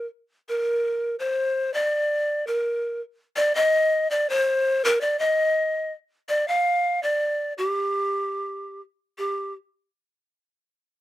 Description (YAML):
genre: andean folk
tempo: 82 BPM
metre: 4/4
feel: straight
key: G minor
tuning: A4 = 444 Hz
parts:
  - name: breathy bright large pan pipes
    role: solo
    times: 0.0-9.5 s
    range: G4 to F5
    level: -21 LUFS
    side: equal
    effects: none
room: light reverb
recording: dry, close 1970s-style studio recording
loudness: -22 LUFS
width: side -14 dB against mid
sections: 0.0-9.2 A section; 9.2-11.0 B section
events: none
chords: none